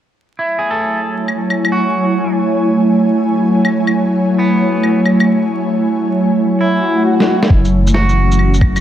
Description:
future garage; 135 BPM; 4/4; swing 66% on 16ths; F# minor; A4 = 442 Hz
electric guitar at the edge of break-up; accompaniment; 0.4-8.6 s; B3 to A4; -21 LUFS; right 1 dB; sidechain pumping, low-pass filter, analog delay
ethereal airy pad; sustained chords; 0.8-8.8 s; E3 to G#5; -13 LUFS; equal; ensemble chorus, built-in reverb, sidechain pumping
electronic claves, snare drum and shaker; drums; 1.3-8.8 s; -18 LUFS; left 1 dB
swell; sound effects; 6.8-7.5 s; -20 LUFS; left 1 dB
warm sub bass; bass; 7.5-8.8 s; F#1; -13 LUFS; equal; sidechain pumping
electronic kick drum; drums; 7.5-8.7 s; -11 LUFS; equal
moderate lush hall reverb, RT60 2.0 s; vinyl crackle; -12 LUFS; side -11 dB against mid
0.4-7.5 A section; 7.5-8.8 B section
swell 6.8-7.5; drum fill 7.2-7.5; filter sweep on clean electric guitar 7.5-8.8
0.4 F#m9; 7.5 F#m7
| 0.39 0.83 1.28 1.72 | 2.17 2.61 3.06 3.50 | 3.95 4.39 4.83 5.28 | 5.72 6.17 6.61 7.06 | 7.50 7.95 8.39

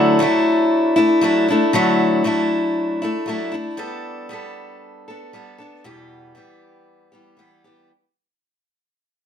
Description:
rock; 117 BPM; 4/4; straight; E minor; A4 = 440 Hz
picked steel-string acoustic guitar; solo; 0.0-7.9 s; E2 to A4; -16 LUFS; left 1 dB; slapback echo
light reverb; -15 LUFS; side -8 dB against mid
0.0-7.9 A section
fade-out 0.0-7.9
0.0 Dadd9; 3.8 Gadd9; 5.8 Em
0.20 0.71 1.22 | 1.73 2.25 2.76 3.27 | 3.79 4.30 4.82 5.33 | 5.85 6.36 6.88 7.39

